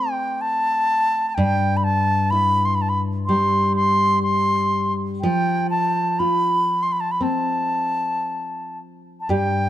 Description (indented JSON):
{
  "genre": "celtic folk, Celtic slow air",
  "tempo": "56-64 BPM",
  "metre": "4/4",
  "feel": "rubato",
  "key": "unclear",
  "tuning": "A4 = 440 Hz",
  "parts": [
    { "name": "bright reedy baroque flute", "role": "melody", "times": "0.0-9.7 s", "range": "G5 to C6", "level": "-20 LUFS", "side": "equal", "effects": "none" },
    { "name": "nylon-string guitar", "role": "accompaniment", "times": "0.0-9.7 s", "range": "G2 to G4", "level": "-23 LUFS", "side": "left 1 dB", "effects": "none" }
  ],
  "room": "light reverb",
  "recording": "close, detailed microphones",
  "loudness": "-18 LUFS",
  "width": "side -12 dB against mid",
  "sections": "0.0-9.3 A section",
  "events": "none",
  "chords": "0.0 F/A; 1.4 G5; 5.2 F"
}